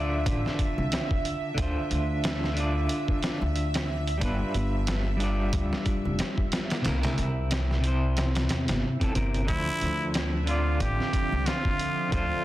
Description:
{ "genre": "trip hop", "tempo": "91 BPM", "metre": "4/4", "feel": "swing 57% on 16ths", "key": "D minor", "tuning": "A4 = 440 Hz", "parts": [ { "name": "electric guitar at the edge of break-up", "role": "accompaniment", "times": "0.0-12.4 s", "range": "C3 to D5", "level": "-30 LUFS", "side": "equal", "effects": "tremolo, tape echo" }, { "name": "upright bass", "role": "bass", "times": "0.0-12.3 s", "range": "F1 to E2", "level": "-28 LUFS", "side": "equal", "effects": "none" }, { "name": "bowed-like drone", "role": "texture", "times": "0.0-12.4 s", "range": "E5", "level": "-38 LUFS", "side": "right 2 dB", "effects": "built-in reverb" }, { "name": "trip hop sampler-style drum kit", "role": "drums", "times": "0.3-12.3 s", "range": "hi-hat, kick drum, snare drum", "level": "-30 LUFS", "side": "equal", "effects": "none" }, { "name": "trumpet with straight mute", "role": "melody", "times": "9.5-12.4 s", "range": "E4 to G4", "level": "-29 LUFS", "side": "equal", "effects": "tape echo" }, { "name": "warbly tape-like pad", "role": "sustained chords", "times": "10.4-12.4 s", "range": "D3 to C4", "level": "-35 LUFS", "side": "right 4 dB", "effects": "chorus, built-in reverb, phaser, vintage 12-bit sampler grit" } ], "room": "little or no reverb", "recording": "dense, heavily limited modern master", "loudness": "-25 LUFS", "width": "side -15 dB against mid", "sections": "0.0-12.4 A section", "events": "none", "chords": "0.0 Dm7; 4.2 G7; 6.8 C7; 9.5 Dm7" }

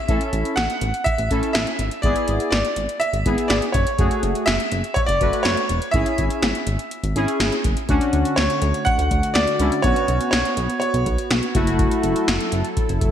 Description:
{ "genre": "synth-pop", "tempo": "123 BPM", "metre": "4/4", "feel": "straight", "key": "unclear", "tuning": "A4 = 438 Hz", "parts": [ { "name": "bright grand piano", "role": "melody", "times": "0.0-11.5 s", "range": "C#5 to F#5", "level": "-23 LUFS", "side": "right 1 dB", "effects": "ping-pong delay" }, { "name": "analog synth brass", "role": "accompaniment", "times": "0.1-12.3 s", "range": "A3 to B4", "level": "-24 LUFS", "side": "left 1 dB", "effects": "chorus" }, { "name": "chorused synth bass", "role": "bass", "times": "0.1-13.1 s", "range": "E1 to D2", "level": "-23 LUFS", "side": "equal", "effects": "none" }, { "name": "electro analog drum machine", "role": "drums", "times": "0.1-13.1 s", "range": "hi-hat, kick drum, snare drum", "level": "-23 LUFS", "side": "equal", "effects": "gated reverb" }, { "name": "chorused pulse-width pad", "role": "sustained chords", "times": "7.9-13.1 s", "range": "D3 to A4", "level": "-27 LUFS", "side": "right 1 dB", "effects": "none" } ], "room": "moderate lush hall reverb, RT60 1.9 s", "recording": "bright 1980s-style digital production", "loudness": "-18 LUFS", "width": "side -9 dB against mid", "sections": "0.0-7.9 A section; 7.9-13.1 B section", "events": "none", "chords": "0.1 A; 2.0 E/G#; 4.0 F#madd9; 5.9 C#m/G#; 7.9 Dmaj7; 9.8 Bsus2; 11.5 F#m7" }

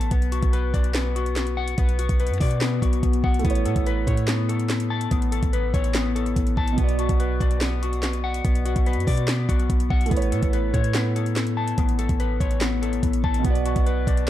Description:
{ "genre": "hip hop, trap", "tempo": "144 BPM", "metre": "4/4", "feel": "half-time", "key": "B minor", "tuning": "A4 = 440 Hz", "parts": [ { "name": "clean electric guitar", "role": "arpeggios", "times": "0.0-14.3 s", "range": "B3 to A5", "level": "-27 LUFS", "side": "left 7 dB", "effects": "lush chorus, low-pass filter, ping-pong delay" }, { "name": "warm 808-style bass", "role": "bass", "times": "0.0-14.3 s", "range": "A1 to B2", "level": "-24 LUFS", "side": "equal", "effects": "none" }, { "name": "trap drum kit", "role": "drums", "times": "0.0-14.3 s", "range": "handclaps, hi-hat, kick drum, snare drum", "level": "-24 LUFS", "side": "equal", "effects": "none" }, { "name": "felt-muted upright piano", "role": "accompaniment", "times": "3.4-14.3 s", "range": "B2 to D5", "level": "-30 LUFS", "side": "right 8 dB", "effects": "low-pass filter" } ], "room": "little or no reverb", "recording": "dark, warm production", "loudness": "-20 LUFS", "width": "side -13 dB against mid", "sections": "0.0-14.3 A section", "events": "none", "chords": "0.1 Bm; 3.4 Aadd9; 6.8 Bm; 10.1 Aadd9; 13.4 Bm" }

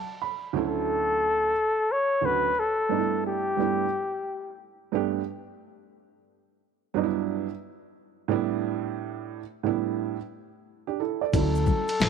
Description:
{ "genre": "hip hop, jazz-hop", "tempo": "89 BPM", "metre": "4/4", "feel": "swing 63% on 16ths", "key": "D major", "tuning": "A4 = 440 Hz", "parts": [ { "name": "dark upright piano", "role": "accompaniment", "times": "0.0-11.9 s", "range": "D2 to B5", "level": "-28 LUFS", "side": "right 12 dB", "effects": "none" }, { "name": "breathy flugelhorn", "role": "melody", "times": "0.6-4.6, 11.4-12.1 s", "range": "G4 to C#5", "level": "-25 LUFS", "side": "left 2 dB", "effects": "none" }, { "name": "upright bass", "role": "bass", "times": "11.3-12.1 s", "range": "A1 to D2", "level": "-26 LUFS", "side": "left 2 dB", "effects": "none" }, { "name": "boom bap sampler-style drum kit", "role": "drums", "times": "11.3-12.1 s", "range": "hi-hat, kick drum, ride cymbal, snare drum", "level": "-26 LUFS", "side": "left 2 dB", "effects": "none" }, { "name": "maracas and congas", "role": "percussion", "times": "11.3-12.1 s", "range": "none", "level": "-35 LUFS", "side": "left 13 dB", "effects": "none" } ], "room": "light reverb, studio reverb", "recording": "1960s-style stereo with parts hard left and right", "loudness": "-24 LUFS", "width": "side -6 dB against mid", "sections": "0.6-12.1 A section", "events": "break 0.0-0.6; upright piano fill 0.0-0.6", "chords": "0.0 N.C.; 0.6 Dmaj9; 3.2 G6; 5.9 Gmaj7; 8.3 A7sus4; 11.3 Dmaj9" }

